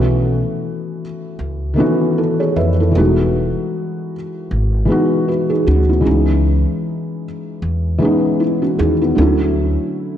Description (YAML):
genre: hip hop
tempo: 77 BPM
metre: 4/4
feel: swing 57% on 16ths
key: E major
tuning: A4 = 441 Hz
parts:
  - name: felt-muted upright piano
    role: accompaniment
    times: 0.0-10.2 s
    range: D3 to E5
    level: -16 LUFS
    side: equal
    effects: cassette tape
  - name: upright bass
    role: bass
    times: 0.0-9.8 s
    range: E1 to F2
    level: -17 LUFS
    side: equal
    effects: none
room: moderate lush hall reverb, RT60 1.8 s, small room ambience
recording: dreamy mix soaked in reverb, cassette tape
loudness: -14 LUFS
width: side -10 dB against mid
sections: 0.0-10.2 A section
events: none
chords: 0.0 B9sus4; 2.9 Emaj7; 6.1 C#m9; 9.2 Dmaj7